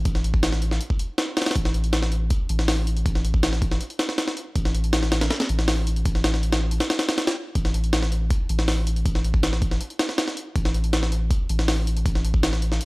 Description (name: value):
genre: drum and bass, jungle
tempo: 160 BPM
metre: 4/4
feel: straight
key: unclear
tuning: A4 = 440 Hz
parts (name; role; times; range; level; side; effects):
- soft dub sub bass; bass; 0.0-12.8 s; A1; -23 LUFS; equal; tube saturation
- jungle sampler-style drum kit; drums; 0.1-12.8 s; hi-hat, kick drum, snare drum; -23 LUFS; equal; none
room: digital ambience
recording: dry, gritty hardware recording, vinyl crackle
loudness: -21 LUFS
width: side -23 dB against mid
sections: 0.0-12.8 A section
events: none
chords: none